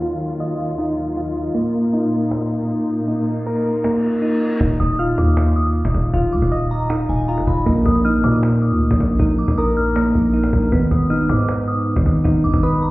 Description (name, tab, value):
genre	hip hop, trap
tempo	157 BPM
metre	4/4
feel	half-time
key	Eb harmonic minor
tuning	A4 = 438 Hz
part	warm studio string section	sustained chords	0.0-4.6 s	Eb2 to F4	-25 LUFS	left 1 dB	none
part	soft electric-piano-like synth keys	arpeggios	0.0-12.9 s	Bb3 to Eb5	-19 LUFS	equal	chorus, low-pass filter, digital delay
part	cajon	drums	0.0-12.9 s	none	-26 LUFS	equal	none
part	reverse cymbal	sound effects	4.0-4.6 s	none	-34 LUFS	left 2 dB	none
part	growling 808-style bass	bass	4.6-12.9 s	Eb1 to Bb2	-18 LUFS	equal	none
part	glassy synth bell	second line	4.8-12.9 s	Ab5 to F6	-26 LUFS	equal	chorus, phaser, digital delay
room	light reverb, small room ambience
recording	heard muffled through a wall, stone room reverb, EQ, low-pass filter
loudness	-16 LUFS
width	side -19 dB against mid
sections	0.0-4.6 A section; 4.6-12.9 B section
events	filter sweep 0.0-4.6; kick muted 3.1-4.6; reverse cymbal 4.0-4.6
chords	0.0 Ebmadd9; 1.5 Bbsus4; 4.6 Ebsus2; 7.7 Bbsus4; 10.7 Abm